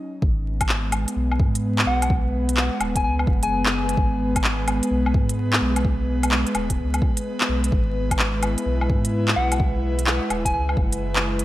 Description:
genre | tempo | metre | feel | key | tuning
future garage | 128 BPM | 4/4 | swing 65% on 16ths | G# minor | A4 = 445 Hz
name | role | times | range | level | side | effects
airy breathy pad | sustained chords | 0.2-11.4 s | G#3 to B4 | -26 LUFS | equal | chorus, sidechain pumping
warm sub bass | bass | 0.2-11.4 s | D#1 to G#2 | -24 LUFS | equal | sidechain pumping
electronic kick drum | drums | 0.2-10.9 s | none | -22 LUFS | equal | none
organic electronic drum kit | drums | 0.6-11.4 s | handclaps, hi-hat, woodblock | -24 LUFS | equal | none
soft struck synth lead | melody | 1.9-4.1, 9.4-10.6 s | F#5 to G#5 | -27 LUFS | left 1 dB | chorus, cassette tape, tape echo
room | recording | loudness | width
light reverb | vinyl crackle | -19 LUFS | side -15 dB against mid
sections
0.2-11.4 A section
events
stop 0.0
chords
0.2 G#m; 7.7 E/G#

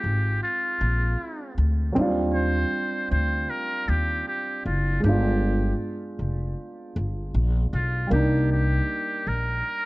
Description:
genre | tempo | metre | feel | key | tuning
lo-fi hip hop | 78 BPM | 4/4 | swing 62% on 16ths | Eb major | A4 = 442 Hz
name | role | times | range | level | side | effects
trumpet with metal mute | melody | 0.0-9.9 s | F4 to C5 | -28 LUFS | equal | none
dark upright piano | accompaniment | 0.0-9.9 s | Gb3 to F4 | -28 LUFS | right 1 dB | plate reverb
upright bass | bass | 0.0-9.6 s | F1 to Eb2 | -24 LUFS | equal | none
room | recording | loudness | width
moderate studio reverb, RT60 0.6 s | cassette tape | -22 LUFS | side -21 dB against mid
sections
0.0-9.9 A section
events
none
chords
0.0 Bb9sus4; 2.0 Ebmaj13; 5.0 G7b9; 8.1 Cm9

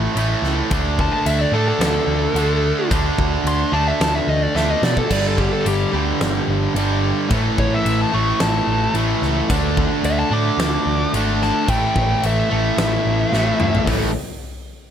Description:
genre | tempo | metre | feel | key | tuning
hard rock | 109 BPM | 4/4 | straight | unclear | A4 = 440 Hz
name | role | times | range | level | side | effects
distorted electric guitar | riff | 0.0-14.1 s | G2 to D4 | -23 LUFS | right 11 dB | overdrive
high-gain distorted guitar | riff | 0.0-14.1 s | G2 to D4 | -25 LUFS | left 11 dB | distortion
picked electric bass | bass | 0.0-14.1 s | G1 to B2 | -22 LUFS | equal | none
huge arena drum kit | drums | 0.2-14.0 s | crash cymbal, hi-hat, kick drum, snare drum, toms | -24 LUFS | left 1 dB | none
dark smooth lead guitar | melody | 1.0-13.8 s | G4 to D6 | -22 LUFS | left 1 dB | overdrive, slapback echo
overdriven semi-hollow guitar | riff | 5.1-14.1 s | G2 to D4 | -25 LUFS | left 2 dB | none
room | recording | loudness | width
light reverb | none | -16 LUFS | side -9 dB against mid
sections
0.0-13.9 A section; 13.9-14.9 B section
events
lead electric guitar solo 0.0-13.9; drum fill 4.6-5.1, 13.3-13.9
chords
0.0 A; 0.7 D5; 5.1 G5; 7.3 A5; 9.5 D5; 11.7 A5

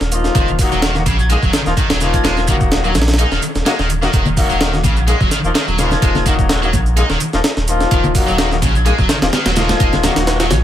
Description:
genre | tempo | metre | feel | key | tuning
breakbeat, breaks | 127 BPM | 4/4 | swing 54% on 16ths | Eb minor | A4 = 440 Hz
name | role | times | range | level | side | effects
saturated sub bass | bass | 0.0-10.6 s | Eb1 to Bb1 | -18 LUFS | equal | none
breakbeat sampler-style drum kit | drums | 0.0-10.6 s | hi-hat, kick drum, snare drum | -17 LUFS | equal | dub echo
shaker | drums | 0.0-10.6 s | none | -30 LUFS | right 5 dB | none
mellow horn section | stabs | 0.1-10.5 s | F3 to Ab4 | -20 LUFS | left 4 dB | vintage 12-bit sampler grit, dub echo
high-gain distorted guitar | riff | 0.4-10.5 s | Db3 to Eb4 | -20 LUFS | equal | distortion, tube saturation, dub echo
congas | percussion | 4.3-10.6 s | none | -24 LUFS | left 3 dB | dub echo
room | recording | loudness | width
light reverb | echo-heavy mix | -12 LUFS | side -11 dB against mid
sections
0.0-10.6 A section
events
none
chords
0.0 Ebm

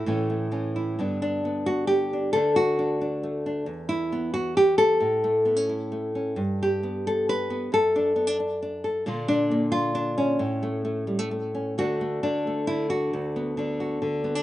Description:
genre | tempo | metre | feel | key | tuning
folk, solo fingerstyle acoustic guitar | 134 BPM | 3/4 | rubato | D major | A4 = 438 Hz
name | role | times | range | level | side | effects
nylon-string guitar | solo | 0.0-14.4 s | D2 to B4 | -23 LUFS | equal | slapback echo
room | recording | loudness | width
light reverb | recorded outdoors, with no room sound, nothing above 10.6 kHz | -23 LUFS | side -14 dB against mid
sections
1.0-11.8 A section; 11.8-14.4 B section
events
none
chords
0.1 A; 1.0 G; 2.3 D; 3.7 E5; 5.0 A; 6.4 G; 7.7 D/F#; 9.1 Bb; 10.4 A; 11.8 D; 13.1 Bm/D

